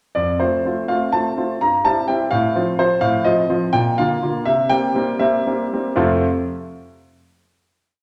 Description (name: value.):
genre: classical-period piano sonatina.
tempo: 76-86 BPM (dotted quarters).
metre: 6/8.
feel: rubato.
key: F major.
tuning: A4 = 444 Hz.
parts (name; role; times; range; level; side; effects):
clear concert grand piano; solo; 0.1-6.2 s; F2 to Bb5; -19 LUFS; equal; none.
room: wet recital hall reverb, RT60 1.3 s.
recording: none.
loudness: -19 LUFS.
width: mono.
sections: 0.2-6.0 A section; 6.0-7.5 final chord.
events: none.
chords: 0.2 F; 1.6 C/G; 2.3 F/A; 3.7 Bb; 4.5 C7; 6.0 F.